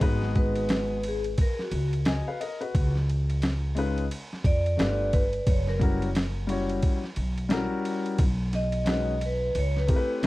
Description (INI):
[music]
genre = hip hop, jazz-hop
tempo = 88 BPM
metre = 4/4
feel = swing 60% on 16ths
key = unclear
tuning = A4 = 440 Hz
[part]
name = dark baby grand piano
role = accompaniment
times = 0.0-10.3 s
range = G3 to G#5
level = -30 LUFS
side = left 3 dB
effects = none
[part]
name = upright bass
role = bass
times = 0.0-10.3 s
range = F#1 to E#2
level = -28 LUFS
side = equal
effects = none
[part]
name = dusty soul sampler-style drum kit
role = drums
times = 0.0-10.3 s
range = hi-hat, kick drum, ride cymbal, snare drum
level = -27 LUFS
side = equal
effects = overdrive
[part]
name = vibraphone with medium hard mallets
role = melody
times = 0.4-10.1 s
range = F#4 to D#5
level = -31 LUFS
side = right 1 dB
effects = tape echo
[sound]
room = light reverb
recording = dark, warm production, vinyl crackle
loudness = -24 LUFS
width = side -18 dB against mid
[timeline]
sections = 0.0-10.3 A section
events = vibraphone solo 0.0-10.3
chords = 0.0 G#m7; 2.7 C#9; 4.8 G9; 5.5 F#7b9; 8.2 B69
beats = | 0.01 0.70 1.38 2.06 | 2.74 3.42 4.11 4.79 | 5.47 6.15 6.83 7.51 | 8.20 8.88 9.56 10.24